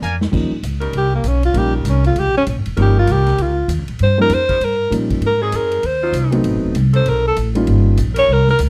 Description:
jazz, big band swing; 196 BPM; 4/4; swing 61% on 8ths; Eb mixolydian; A4 = 440 Hz
upright bass; bass; 0.0-8.7 s; Eb1 to Bb2; -19 LUFS; equal
swinging big-band drum kit; drums; 0.0-8.7 s; crash cymbal, hi-hat, kick drum, ride cymbal, snare drum, toms; -30 LUFS; equal
warm grand piano; accompaniment; 0.3-8.0 s; F3 to F4; -22 LUFS; equal
clear saxophone section; sustained chords; 0.8-8.6 s; Gb3 to Bb4; -29 LUFS; equal
clear alto saxophone; melody; 1.0-8.6 s; Bb3 to Db5; -19 LUFS; equal; slapback echo
little or no reverb; dry, close 1970s-style studio recording; -16 LUFS; mono
0.3-8.7 A section
drum fill 0.0-0.3; alto saxophone solo 0.3-8.7
0.3 Eb7; 5.2 Ab7; 6.5 Adim7; 7.7 Eb7
0.02 | 0.33 0.63 0.94 1.25 | 1.55 1.86 2.17 2.47 | 2.78 3.08 3.39 3.70 | 4.00 4.31 4.62 4.92 | 5.23 5.53 5.84 6.15 | 6.45 6.76 7.07 7.37 | 7.68 7.98 8.29 8.60

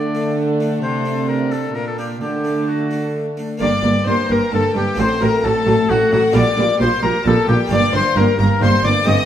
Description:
classical, baroque-style concerto movement with solo episodes; 132 BPM; 3/4; straight; G minor; A4 = 444 Hz
clear oboe; melody; 0.0-9.3 s; F#4 to Eb5; -22 LUFS; left 2 dB
rich chamber violin section; melody; 0.0-9.3 s; F#5 to Eb6; -27 LUFS; left 3 dB
warm chamber violin section; second line; 0.0-9.3 s; D4 to Eb5; -24 LUFS; left 3 dB
harpsichord; accompaniment; 0.0-9.3 s; G2 to A4; -23 LUFS; left 1 dB
rich studio viola section; accompaniment; 0.0-9.2 s; F#3 to C4; -23 LUFS; equal
warm chamber cello section; bass; 0.0-9.1 s; G2 to D3; -20 LUFS; right 2 dB
warm chamber double bass section; bass; 3.6-9.1 s; G1 to Bb1; -22 LUFS; right 3 dB
wet recital hall reverb, RT60 1.5 s; -15 LUFS; side -10 dB against mid
0.0-3.6 A section; 3.6-9.3 B section
0.0 D; 0.8 D7/C; 1.7 Gm/Bb; 2.2 D; 3.6 Gm; 5.0 D7/A; 6.4 Gm/Bb; 7.7 Gm
0.38 | 0.83 1.29 1.75 | 2.21 2.68 3.15 | 3.61 4.07 4.53 | 4.99 5.44 5.90 | 6.35 6.81 7.26 | 7.71 8.17 8.62 | 9.07

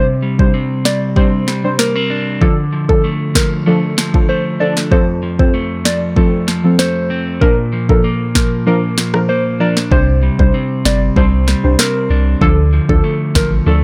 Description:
dancehall; 96 BPM; 4/4; straight; A4 = 440 Hz
soft struck synth lead; melody; 0.0-13.5 s; A4 to D5; -23 LUFS; equal; chorus, analog delay
deep mellow chord stab; accompaniment; 0.0-13.8 s; F3 to C5; -20 LUFS; equal; chorus
electric guitar at the edge of break-up; arpeggios; 0.0-13.8 s; F2 to D4; -20 LUFS; equal; analog delay
afro-pop drum kit; drums; 0.4-13.5 s; kick drum, rim click, snare drum; -17 LUFS; equal
punchy sub bass; bass; 9.9-13.8 s; G1 to D2; -16 LUFS; equal
digital ambience; dry, gritty hardware recording, transformer saturation; -14 LUFS; mono
0.0-13.8 A section
kick muted 8.7-9.9
0.0 Csus2; 2.4 Dm; 4.9 F; 7.4 Bb; 9.9 Csus2; 12.4 Dm
0.54 1.17 1.79 | 2.42 3.04 3.67 4.29 | 4.92 5.54 6.17 6.79 | 7.42 8.04 8.66 9.29 | 9.91 10.54 11.16 11.79 | 12.41 13.04 13.66

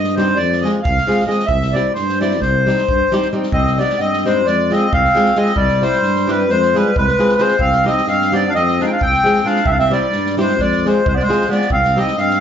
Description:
balkan folk, Balkan wedding band; 264 BPM (eighths); 9/8; straight; C harmonic minor; A4 = 440 Hz
accordion; melody; 0.0-12.4 s; B4 to G5; -16 LUFS; equal; slapback echo
mellow tuba; bass; 0.0-12.4 s; C2 to G2; -20 LUFS; equal
swinging big-band drum kit; percussion; 0.0-12.4 s; kick drum, snare drum; -25 LUFS; equal
flamenco guitar; accompaniment; 0.2-12.1 s; G3 to Ab4; -19 LUFS; equal; slapback echo
clear clarinet; second line; 3.5-12.4 s; G3 to Eb4; -20 LUFS; left 4 dB; slapback echo
light reverb; live gig heard through the venue's PA, club reverb, nothing above 7.6 kHz; -13 LUFS; side -8 dB against mid
0.0-3.5 A section; 3.5-12.4 A section
0.3 Fm; 1.5 C; 2.4 Cm; 4.4 Fm; 5.6 C; 6.5 Fm; 7.6 Cm; 8.5 Fm; 9.7 C; 10.6 Fm; 11.7 Cm
0.12 0.35 0.58 0.80 1.03 1.26 | 1.48 1.71 1.94 2.16 2.39 2.62 2.84 3.07 3.30 | 3.52 3.75 3.98 4.20 4.43 4.65 4.88 5.11 5.33 | 5.56 5.79 6.01 6.24 6.47 6.69 6.92 7.15 7.37 | 7.60 7.83 8.06 8.28 8.51 8.74 8.97 9.19 9.42 | 9.65 9.88 10.11 10.33 10.56 10.79 11.02 11.25 11.47 | 11.70 11.93 12.16 12.39

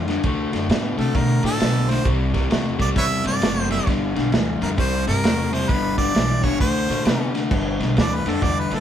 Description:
electric blues shuffle; 132 BPM; 4/4; swing 63% on 8ths; G major; A4 = 441 Hz
bright harmonica; melody; 0.0-8.8 s; A4 to E5; -25 LUFS; right 1 dB
crunchy overdriven guitar; riff; 0.0-8.8 s; G2 to B3; -23 LUFS; left 3 dB
upright bass; bass; 0.0-8.8 s; F#1 to C3; -24 LUFS; right 1 dB
crunchy breakbeat drum kit; drums; 0.1-8.8 s; crash cymbal, kick drum, ride cymbal, snare drum; -23 LUFS; right 1 dB
moderate studio reverb, RT60 0.8 s; band playing live in one room; -18 LUFS; side -10 dB against mid
0.0-7.5 A section; 7.5-8.8 B section
harmonica solo 7.5-8.8
0.2 D5; 2.1 C; 3.9 G7; 4.8 C7; 5.7 G; 6.6 D5; 7.5 G
| 0.24 0.69 1.15 1.60 | 2.06 2.51 2.96 3.42 | 3.87 4.33 4.78 5.24 | 5.69 6.14 6.60 7.05 | 7.51 7.96 8.42

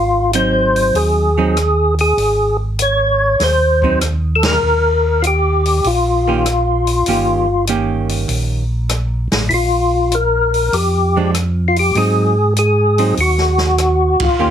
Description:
soul jazz organ trio; 98 BPM; 4/4; swing 68% on 8ths; A4 = 441 Hz
percussive tonewheel organ; melody; 0.0-14.5 s; Fb4 to Db5; -15 LUFS; left 1 dB; slow rotary speaker, chorus vibrato
mellow tonewheel organ; bass; 0.0-14.5 s; G1 to Ab2; -18 LUFS; right 1 dB; slow rotary speaker
archtop guitar, miked and amplified; accompaniment; 0.3-14.5 s; Eb3 to G4; -19 LUFS; right 5 dB
open jazz drum kit; drums; 0.3-14.3 s; hi-hat, kick drum, ride cymbal, rim click, snare drum; -22 LUFS; left 1 dB
light reverb; heavily compressed radio sound; -13 LUFS; side -9 dB against mid
0.0-14.5 A section
band accent 4.3-4.6, 14.1-14.4
0.0 Ab7; 4.6 Eb7; 9.5 Bb5; 12.0 Ab7
0.34 0.95 1.56 | 2.18 2.79 3.40 4.01 | 4.62 5.24 5.85 6.46 | 7.07 7.68 8.29 8.90 | 9.51 10.12 10.73 11.35 | 11.96 12.56 13.18 13.78 | 14.39

